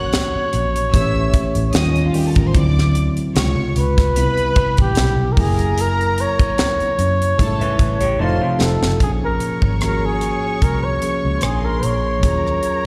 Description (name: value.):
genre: lush 1970s-style soul.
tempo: 74 BPM.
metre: 4/4.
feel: swing 54% on 16ths.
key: Bb minor from 9.0 s.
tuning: A4 = 440 Hz.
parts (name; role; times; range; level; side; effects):
breathy flugelhorn; melody; 0.0-12.9 s; F4 to C#5; -23 LUFS; equal; slapback echo.
rich studio violin section; second line; 0.0-12.9 s; C#4 to F#6; -31 LUFS; equal; slapback echo.
mellow tine electric piano; accompaniment; 0.0-12.9 s; B#2 to Ab4; -25 LUFS; equal; none.
tight funk drum kit; drums; 0.1-12.8 s; hi-hat, kick drum, rim click, snare drum; -21 LUFS; equal; none.
vintage muted fingered electric bass; bass; 0.4-12.6 s; F1 to A2; -22 LUFS; equal; none.
electric guitar through a small old amp; riff; 7.6-9.0 s; C4 to E5; -29 LUFS; equal; slapback echo.
room: light reverb, small room ambience.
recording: live gig heard through the venue's PA, recital hall reverb.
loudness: -18 LUFS.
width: mono.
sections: 0.0-9.0 A section; 9.0-12.9 B section.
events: drum fill 8.2-9.0.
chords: 0.0 F#7; 0.9 A7; 1.7 D#9; 2.6 D9; 3.4 C#maj7; 4.2 Cmaj7; 5.4 F#7; 7.4 A7; 8.2 F7; 9.0 Bbm7; 11.4 Bb7; 12.2 Ebm11.